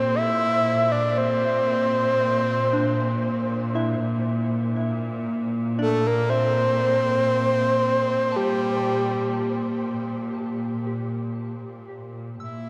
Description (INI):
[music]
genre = ambient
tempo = 59 BPM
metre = 4/4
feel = straight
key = unclear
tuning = A4 = 440 Hz
[part]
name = breathy flute-like synth lead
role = melody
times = 0.0-12.7 s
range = G4 to E5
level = -25 LUFS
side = equal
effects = chorus, diffuse ambient delay
[part]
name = soft synth bell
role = arpeggios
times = 0.0-12.7 s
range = D4 to E6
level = -37 LUFS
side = equal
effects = chorus, diffuse ambient delay
[part]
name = warm studio cello section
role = bass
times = 0.0-12.7 s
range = Bb2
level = -28 LUFS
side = equal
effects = none
[sound]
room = wet huge ambient reverb, RT60 7.1 s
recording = none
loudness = -23 LUFS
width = mono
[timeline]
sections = 0.0-12.4 A section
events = fade-out on synth bell 0.0-12.4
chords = 0.0 Cadd9/Bb